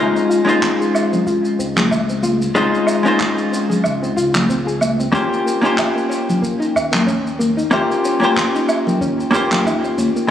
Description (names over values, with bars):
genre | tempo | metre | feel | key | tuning
sunset chillout | 93 BPM | 4/4 | swing 56% on 16ths | unclear | A4 = 441 Hz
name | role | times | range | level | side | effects
vintage hollow-body jazz guitar | accompaniment | 0.0-10.3 s | Ab3 to C5 | -17 LUFS | left 1 dB | auto-pan, tape echo
round analog bass | bass | 0.0-10.1 s | Db2 to Eb2 | -26 LUFS | equal | none
soft round pluck | arpeggios | 0.2-10.3 s | Bb3 to Ab4 | -23 LUFS | left 1 dB | chorus, tape echo
shaker, handclaps and woodblock | drums | 0.2-10.3 s | none | -22 LUFS | right 2 dB | none
congas | percussion | 0.5-10.1 s | none | -22 LUFS | left 1 dB | none
electronic kick drum | drums | 0.6-9.8 s | none | -32 LUFS | equal | none
room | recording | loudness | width
wet lush hall reverb, RT60 2.0 s, small room reverb | recorded on a phone in the room, studio reverb | -14 LUFS | side -10 dB against mid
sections
0.0-10.3 A section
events
none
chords
0.0 Dbmaj7; 5.1 Eb13